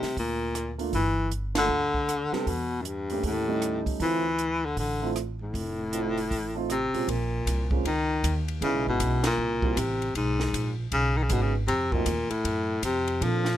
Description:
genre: jazz, small-group swing and bop.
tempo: 156 BPM.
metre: 4/4.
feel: swing 63% on 8ths.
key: unclear.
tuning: A4 = 440 Hz.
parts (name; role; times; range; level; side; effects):
warm baritone saxophone; melody; 0.0-13.6 s; F#2 to F3; -27 LUFS; left 2 dB; none.
upright bass; bass; 0.0-13.6 s; F1 to Bb2; -30 LUFS; right 1 dB; none.
compact cocktail drum kit; drums; 0.0-13.5 s; hi-hat, kick drum, ride cymbal, rim click, snare drum; -34 LUFS; right 1 dB; none.
dark baby grand piano; accompaniment; 0.8-13.4 s; Bb2 to A4; -31 LUFS; right 5 dB; none.
room: little or no reverb.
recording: close, detailed microphones.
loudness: -25 LUFS.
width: side -12 dB against mid.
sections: 0.0-7.1 A section; 7.1-13.6 B section.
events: band accent 1.5, 9.2.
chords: 0.2 Dm; 0.9 Gsus2; 2.5 Em; 3.2 Eb7#11; 4.0 Dm9; 5.5 F7; 7.1 Bbm; 8.6 Dbm7; 9.4 C7#11; 10.2 B6; 11.7 F7b9.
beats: 0.17 0.55 | 0.93 1.32 1.70 2.08 | 2.47 2.85 3.23 3.62 | 4.00 4.39 4.77 5.16 | 5.54 5.92 6.31 6.69 | 7.08 7.46 7.85 8.23 | 8.61 9.00 9.38 9.77 | 10.15 10.53 10.92 11.30 | 11.69 12.07 12.45 12.84 | 13.22.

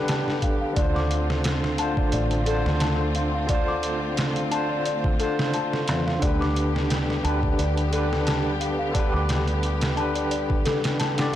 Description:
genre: trip hop.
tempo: 88 BPM.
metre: 4/4.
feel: swing 54% on 16ths.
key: D dorian.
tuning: A4 = 441 Hz.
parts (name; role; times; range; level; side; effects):
barky tine electric piano; accompaniment; 0.0-11.4 s; D3 to D5; -27 LUFS; equal; medium stereo tremolo, tape echo.
rich studio string section; sustained chords; 0.0-11.4 s; D3 to G4; -31 LUFS; equal; none.
small celesta; arpeggios; 0.0-11.4 s; A4 to D6; -30 LUFS; left 4 dB; tape echo.
deep dub fingered electric bass; bass; 0.0-11.3 s; A1 to E2; -26 LUFS; right 1 dB; tube saturation.
trip hop sampler-style drum kit; drums; 0.1-11.3 s; hi-hat, kick drum, snare drum; -26 LUFS; right 1 dB; studio reverb.
room: light reverb.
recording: blown-out, overdriven recording, overdrive.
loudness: -21 LUFS.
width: side -12 dB against mid.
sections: 0.0-11.4 A section.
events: none.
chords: 0.0 G/D; 0.8 Dm7; 6.2 G/D.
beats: 0.08 | 0.77 1.45 2.13 2.81 | 3.49 4.17 4.86 5.54 | 6.22 6.90 7.58 8.27 | 8.95 9.63 10.31 10.99.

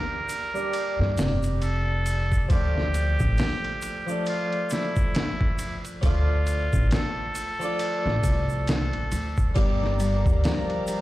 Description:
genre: trip hop.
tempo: 68 BPM.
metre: 4/4.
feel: swing 59% on 16ths.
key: unclear.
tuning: A4 = 439 Hz.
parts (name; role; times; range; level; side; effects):
trumpet with straight mute; melody; 0.0-9.5 s; E4 to Bb4; -32 LUFS; right 1 dB; tape echo.
harpsichord; accompaniment; 0.0-11.0 s; F3 to A4; -30 LUFS; equal; tremolo, low-pass filter.
trip hop sampler-style drum kit; drums; 0.3-11.0 s; hi-hat, kick drum, ride cymbal, snare drum; -27 LUFS; equal; studio reverb.
tube shaker; percussion; 0.3-11.0 s; none; -44 LUFS; left 3 dB; none.
upright bass; bass; 1.0-10.4 s; F1 to G2; -24 LUFS; equal; none.
warm studio violin section; sustained chords; 9.6-11.0 s; G4 to Bb5; -35 LUFS; equal; vintage 12-bit sampler grit.
Celtic harp; arpeggios; 9.6-11.0 s; F3 to G3; -30 LUFS; left 1 dB; ping-pong delay.
room: studio reverb.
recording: played on a big sound system in a bare room, large studio reverb.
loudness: -22 LUFS.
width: side -16 dB against mid.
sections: 0.0-11.0 A section.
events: filter sweep on harpsichord 0.0-11.0.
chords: 0.0 Gm; 2.5 Dm; 9.6 Gm.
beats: 0.73 1.61 | 2.50 3.38 4.26 5.14 | 6.03 6.91 7.79 8.67 | 9.56 10.44.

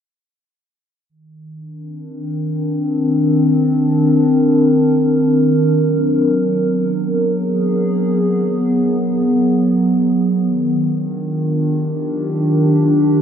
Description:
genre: ambient.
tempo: free time.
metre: none.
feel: none.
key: unclear.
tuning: A4 = 440 Hz.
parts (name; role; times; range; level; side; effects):
warbly tape-like pad; sustained chords; 1.1-13.2 s; Eb3 to Bb4; -14 LUFS; equal; chorus, built-in reverb.
room: wet huge ambient reverb, RT60 7.7 s.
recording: none.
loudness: -14 LUFS.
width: side -8 dB against mid.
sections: 1.1-13.2 A section.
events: filter sweep on ambient pad 1.1-13.2.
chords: 1.1 Cm9; 5.8 Abm9; 10.5 Ebmaj9.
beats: free time.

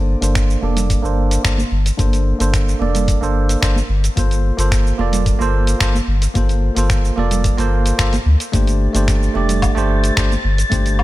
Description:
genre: sunset chillout.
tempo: 110 BPM.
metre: 4/4.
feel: straight.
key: G minor.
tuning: A4 = 440 Hz.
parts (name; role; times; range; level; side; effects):
bell-like tine electric piano; accompaniment; 0.0-11.0 s; A3 to D5; -21 LUFS; moving between left 6 dB and right 6 dB; auto-pan, vintage 12-bit sampler grit, low-pass filter, ping-pong delay, shimmer reverb.
warm sub bass; bass; 0.0-11.0 s; F1 to D2; -17 LUFS; equal; none.
dusty soul sampler-style drum kit; drums; 0.2-11.0 s; cabasa, finger snaps, hi-hat, woodblock; -24 LUFS; equal; studio reverb.
congas; percussion; 0.2-10.8 s; none; -27 LUFS; right 4 dB; none.
electronic kick drum; drums; 0.4-10.8 s; none; -19 LUFS; equal; studio reverb.
wind-like tuned noise texture; texture; 9.0-11.0 s; A6; -26 LUFS; left 2 dB; built-in reverb, shimmer reverb.
room: little or no reverb.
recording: none.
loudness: -14 LUFS.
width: side -16 dB against mid.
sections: 0.0-11.0 A section.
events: filter sweep on tine electric piano 0.0-11.0.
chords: 0.0 Gm11; 8.5 D7sus4.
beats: 0.35 0.90 1.44 | 1.99 2.54 3.08 3.63 | 4.17 4.72 5.26 5.81 | 6.35 6.90 7.44 7.99 | 8.54 9.08 9.63 10.17 | 10.72.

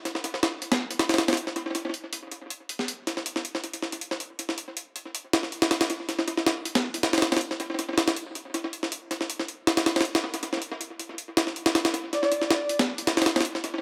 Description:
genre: drum and bass, jungle.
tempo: 159 BPM.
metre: 4/4.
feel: straight.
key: unclear.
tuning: A4 = 439 Hz.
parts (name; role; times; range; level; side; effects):
jungle sampler-style drum kit; drums; 0.1-13.7 s; hi-hat, snare drum; -28 LUFS; equal; high-pass filter on hats, high-pass filter on kick, high-pass filter on snare, tape echo.
breathy flute-like synth lead; melody; 12.1-12.8 s; D5; -31 LUFS; equal; analog chorus, dub echo.
room: moderate plate reverb, RT60 2.0 s.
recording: echo-heavy mix.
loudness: -27 LUFS.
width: mono.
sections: 0.0-13.8 A section.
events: none.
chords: none.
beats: 0.24 0.62 1.00 | 1.37 1.75 2.13 2.51 | 2.88 3.26 3.64 4.01 | 4.39 4.77 5.15 5.53 | 5.90 6.28 6.66 7.03 | 7.41 7.79 8.17 8.54 | 8.92 9.30 9.68 10.05 | 10.43 10.81 11.19 11.56 | 11.94 12.32 12.69 13.07 | 13.45.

